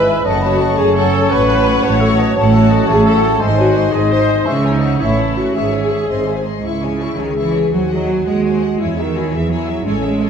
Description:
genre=classical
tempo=113 BPM (dotted quarters)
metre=6/8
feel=straight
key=C# minor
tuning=A4 = 442 Hz
part: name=rich symphonic violin section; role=melody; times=0.0-10.3 s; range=E5 to C#6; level=-29 LUFS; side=left 5 dB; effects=none
part: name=mellow concert flute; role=second line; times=0.0-6.7 s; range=B#4 to B#5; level=-24 LUFS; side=left 2 dB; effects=none
part: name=rich symphonic violin section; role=second line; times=0.0-10.3 s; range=G#4 to A5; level=-26 LUFS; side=left 5 dB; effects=none
part: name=warm oboe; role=second line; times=0.0-6.3 s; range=B#4 to F#5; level=-25 LUFS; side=equal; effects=none
part: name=rich symphonic viola section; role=accompaniment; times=0.0-10.3 s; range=D#4 to C#5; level=-19 LUFS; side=equal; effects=none
part: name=mellow French horn section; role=sustained chords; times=0.0-10.3 s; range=D#3 to G#4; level=-21 LUFS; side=left 2 dB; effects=none
part: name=clear symphonic cello section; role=bass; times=0.0-10.3 s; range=F#2 to G#3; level=-19 LUFS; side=right 2 dB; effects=none
part: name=rich symphonic double bass section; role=bass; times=0.0-10.3 s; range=F#1 to E2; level=-20 LUFS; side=right 3 dB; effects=none
part: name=dark clarinet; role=second line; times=0.1-6.5 s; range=A4 to E5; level=-23 LUFS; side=left 5 dB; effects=none
room=moderate scoring stage reverb, RT60 1.6 s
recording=dark, warm production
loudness=-12 LUFS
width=side -7 dB against mid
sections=0.0-6.7 A section; 6.7-10.3 B section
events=none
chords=0.2 F#m; 1.3 F#m/A; 3.4 G#; 4.5 C#m; 5.0 A; 5.5 C#m/G#; 6.1 G#; 6.7 C#m; 7.7 G#7/D#; 8.8 C#m/E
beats=| 0.25 0.78 | 1.31 1.84 | 2.36 2.89 | 3.41 3.93 | 4.46 5.00 | 5.55 6.10 | 6.65 7.20 | 7.73 8.26 | 8.80 9.33 | 9.85

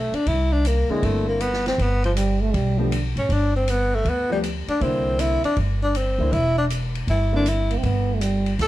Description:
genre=jazz, small-group swing and bop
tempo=159 BPM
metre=4/4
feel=swing 66% on 8ths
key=unclear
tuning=A4 = 439 Hz
part: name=clear tenor saxophone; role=melody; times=0.0-8.7 s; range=F3 to A4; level=-23 LUFS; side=left 1 dB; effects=plate reverb
part: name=upright bass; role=bass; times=0.0-8.7 s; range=E1 to D2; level=-23 LUFS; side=equal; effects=none
part: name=open jazz drum kit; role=drums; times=0.1-8.7 s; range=hi-hat, kick drum, ride cymbal, snare drum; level=-31 LUFS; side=equal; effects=none
part: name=warm concert grand piano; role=accompaniment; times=0.9-7.5 s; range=D3 to G4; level=-27 LUFS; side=left 1 dB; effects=none
part: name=breathy trombone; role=second line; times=2.2-3.0, 7.7-8.5 s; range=D3 to C4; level=-25 LUFS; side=right 4 dB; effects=none
room=light reverb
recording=dark, warm production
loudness=-19 LUFS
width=side -15 dB against mid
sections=0.0-8.7 A section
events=none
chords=0.3 C9; 1.8 G; 4.8 C9; 7.8 G5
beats=| 0.27 0.65 1.02 1.40 | 1.78 2.16 2.54 2.92 | 3.30 3.67 4.05 4.43 | 4.81 5.19 5.57 5.94 | 6.32 6.70 7.08 7.46 | 7.83 8.21 8.59

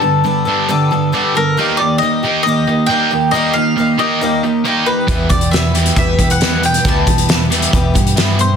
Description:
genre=folk rock and heartland rock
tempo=136 BPM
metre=4/4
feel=straight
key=unclear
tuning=A4 = 440 Hz
part: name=mandolin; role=melody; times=0.0-8.6 s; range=Bb4 to A5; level=-18 LUFS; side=left 2 dB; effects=none
part: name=picked twelve-string acoustic guitar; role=accompaniment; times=0.0-8.6 s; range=E2 to A4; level=-20 LUFS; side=left 5 dB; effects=none
part: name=cranked stack guitar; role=riff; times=0.0-8.6 s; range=E2 to Eb4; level=-16 LUFS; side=right 3 dB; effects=overdrive, spring reverb
part: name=warm studio string section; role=sustained chords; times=5.1-8.6 s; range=G3 to B4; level=-28 LUFS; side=right 3 dB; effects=none
part: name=hollow-body short-scale picked electric bass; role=bass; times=5.1-8.5 s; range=D2 to G2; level=-17 LUFS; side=equal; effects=none
part: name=loose indie drum kit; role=drums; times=5.1-8.5 s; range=hi-hat, kick drum, snare drum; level=-15 LUFS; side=equal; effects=none
room=light reverb, studio reverb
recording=dense, heavily limited modern master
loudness=-12 LUFS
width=side -7 dB against mid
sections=0.0-8.6 A section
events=none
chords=0.0 Gadd9; 1.6 Eb; 5.1 Em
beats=0.25 0.69 1.13 | 1.57 2.01 2.45 2.89 | 3.33 3.77 4.21 4.66 | 5.09 5.54 5.97 6.41 | 6.85 7.29 7.73 8.17

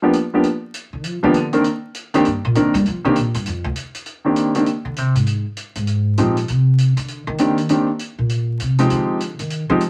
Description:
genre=jazz piano trio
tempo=198 BPM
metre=4/4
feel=swing 63% on 8ths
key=C minor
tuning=A4 = 440 Hz
part: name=warm concert grand piano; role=melody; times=0.0-9.8 s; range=Eb3 to A#4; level=-19 LUFS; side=equal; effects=none
part: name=hi-hat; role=drums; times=0.1-9.9 s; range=none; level=-35 LUFS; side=equal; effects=none
part: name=upright bass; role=bass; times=0.9-9.9 s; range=D2 to G3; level=-21 LUFS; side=equal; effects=none
room=moderate small room reverb, RT60 0.5 s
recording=vinyl crackle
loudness=-19 LUFS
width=mono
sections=0.0-4.1 A section; 4.1-9.9 A section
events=upright bass solo 0.0-9.9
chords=0.0 Gm7 (rootless); 1.6 Cm7 (rootless); 3.5 Dm; 4.1 Cm7; 5.3 N.C.; 6.5 Cm7; 8.9 Fm7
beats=0.14 | 0.44 0.74 1.04 1.34 | 1.65 1.95 2.25 2.55 | 2.85 3.15 3.46 3.76 | 4.06 4.36 4.66 4.96 | 5.27 5.57 5.87 6.17 | 6.48 6.78 7.08 7.38 | 7.69 7.99 8.29 8.59 | 8.90 9.20 9.50 9.80

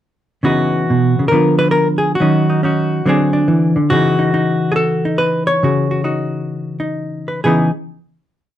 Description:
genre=solo jazz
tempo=139 BPM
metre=4/4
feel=swing 65% on 8ths, rubato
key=C# minor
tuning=A4 = 442 Hz
part: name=hollow-body jazz guitar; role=solo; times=0.4-7.7 s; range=B2 to C#5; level=-13 LUFS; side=equal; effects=none
room=moderate club reverb, RT60 0.6 s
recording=none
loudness=-13 LUFS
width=side -12 dB against mid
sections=0.4-7.4 A section; 7.4-8.6 final chord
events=none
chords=0.4 C#m11; 1.3 Ddim7; 2.2 D#m7; 3.1 D7#11; 3.9 C#madd9; 7.4 C#m9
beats=| 0.44 0.88 1.33 1.76 | 2.19 2.63 3.06 3.49 | 3.92 4.34 4.76 5.19 | 5.62 6.05 6.49 6.96 | 7.42

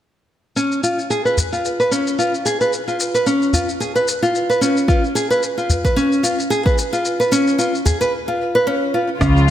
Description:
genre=organic downtempo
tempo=111 BPM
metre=4/4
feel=swing 56% on 16ths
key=Db mixolydian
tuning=A4 = 440 Hz
part: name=nylon-string guitar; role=arpeggios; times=0.6-9.5 s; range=Db4 to Cb5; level=-16 LUFS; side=equal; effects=low-pass filter, digital delay
part: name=shaker and woodblock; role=drums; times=0.6-9.5 s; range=none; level=-26 LUFS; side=left 2 dB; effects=none
part: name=udu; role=percussion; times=1.4-8.0 s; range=none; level=-20 LUFS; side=left 1 dB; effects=none
part: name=electronic kick drum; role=drums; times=4.9-9.3 s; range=none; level=-18 LUFS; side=equal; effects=none
part: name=warm studio string section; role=sustained chords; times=9.2-9.5 s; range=Db3 to F4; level=-19 LUFS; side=left 2 dB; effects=sidechain pumping
part: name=mellow fretless electric bass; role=bass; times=9.2-9.5 s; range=Db2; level=-14 LUFS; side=equal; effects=wide subtle chorus
room=moderate lush hall reverb, RT60 2.0 s, small room ambience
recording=bright 1980s-style digital production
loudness=-16 LUFS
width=side -11 dB against mid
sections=0.6-9.2 A section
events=break 8.1-9.2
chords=0.6 Db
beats=| 0.56 1.10 1.64 2.18 | 2.72 3.26 3.80 4.34 | 4.88 5.42 5.97 6.51 | 7.05 7.59 8.13 8.67 | 9.21

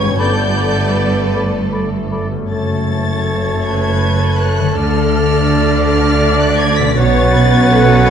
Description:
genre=cinematic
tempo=53 BPM (dotted quarters)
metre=6/8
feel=rubato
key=unclear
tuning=A4 = 440 Hz
part: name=warm studio violin section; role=melody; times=0.0-8.1 s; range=F6 to B6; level=-22 LUFS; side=left 2 dB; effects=none
part: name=rich studio violin section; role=second line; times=0.0-8.1 s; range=A4 to D5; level=-25 LUFS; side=left 2 dB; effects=none
part: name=rich studio viola section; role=accompaniment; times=0.0-8.1 s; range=A4 to D5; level=-20 LUFS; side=right 1 dB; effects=none
part: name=dark French horn section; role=sustained chords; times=0.0-8.1 s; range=F#3 to D4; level=-21 LUFS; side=left 3 dB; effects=none
part: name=concert harp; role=arpeggios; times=0.0-8.1 s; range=F#2 to D5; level=-22 LUFS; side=left 6 dB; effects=none
part: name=clear studio cello section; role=bass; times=0.0-8.1 s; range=F#2 to D3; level=-19 LUFS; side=right 4 dB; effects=none
part: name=clear studio double bass section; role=bass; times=0.0-8.1 s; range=F#1 to D2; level=-17 LUFS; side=right 3 dB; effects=none
part: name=clear oboe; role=second line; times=0.2-8.1 s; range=C#5 to D5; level=-25 LUFS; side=right 1 dB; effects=none
part: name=mellow silver concert flute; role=second line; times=0.2-8.1 s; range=F#5 to B5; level=-24 LUFS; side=left 2 dB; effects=none
part: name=warm clarinet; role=second line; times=0.2-8.1 s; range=A4 to B4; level=-24 LUFS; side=equal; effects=none
room=moderate scoring stage reverb, RT60 2.0 s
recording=dark, warm production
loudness=-12 LUFS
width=side -8 dB against mid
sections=0.0-8.1 A section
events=none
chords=0.2 Gadd9; 2.5 F#m; 4.8 Dm; 7.0 Bsus2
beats=| 0.19 1.35 | 2.50 3.64 | 4.77 5.87 | 6.96 8.09

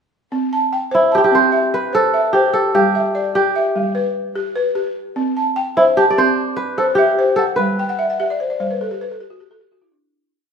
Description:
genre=west african traditional, West African string and xylophone music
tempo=99 BPM (dotted quarters)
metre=12/8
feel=straight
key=C lydian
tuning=A4 = 440 Hz
part: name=balafon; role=arpeggios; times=0.3-10.1 s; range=G3 to A5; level=-18 LUFS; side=equal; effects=none
part: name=kora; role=melody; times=0.9-9.6 s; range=E4 to D5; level=-15 LUFS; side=right 1 dB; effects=none
room=moderate recital hall reverb, RT60 1.6 s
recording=minimal, uncompressed stereo recording, lossy compression artefacts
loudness=-15 LUFS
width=side -6 dB against mid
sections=0.3-10.0 A section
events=fade-out 7.6-10.0; balafon fill 7.8-10.0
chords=0.3 C; 2.7 G; 5.2 C; 7.6 G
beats=| 0.32 0.93 1.53 2.14 | 2.75 3.35 3.96 4.57 | 5.17 5.78 6.38 6.99 | 7.59 8.20 8.80 9.41

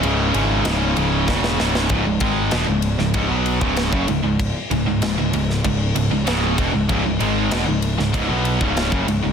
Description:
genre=heavy metal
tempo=96 BPM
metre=4/4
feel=straight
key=C# minor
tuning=A4 = 440 Hz
part: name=distorted electric guitar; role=riff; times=0.0-9.3 s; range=C#2 to E4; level=-25 LUFS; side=equal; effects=distortion
part: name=high-gain distorted guitar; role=riff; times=0.0-9.3 s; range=C#2 to B3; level=-24 LUFS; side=left 11 dB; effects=distortion
part: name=tight distorted guitar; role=riff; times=0.0-9.3 s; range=C#2 to B3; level=-23 LUFS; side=right 10 dB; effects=distortion
part: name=fuzz picked electric bass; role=bass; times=0.0-9.3 s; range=C#1 to B1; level=-23 LUFS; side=equal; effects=overdrive
part: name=tight metal drum kit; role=drums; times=0.0-9.2 s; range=kick drum, ride cymbal, snare drum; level=-24 LUFS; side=equal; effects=soft clipping on kick
room=light reverb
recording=dense, heavily limited modern master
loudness=-17 LUFS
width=side -7 dB against mid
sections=0.0-1.9 A section; 1.9-9.3 B section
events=half time 0.0-1.9; drum fill 1.3-1.9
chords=0.0 C#m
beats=0.03 0.65 1.28 | 1.90 2.52 3.15 3.77 | 4.39 5.02 5.64 6.27 | 6.89 7.51 8.14 8.77

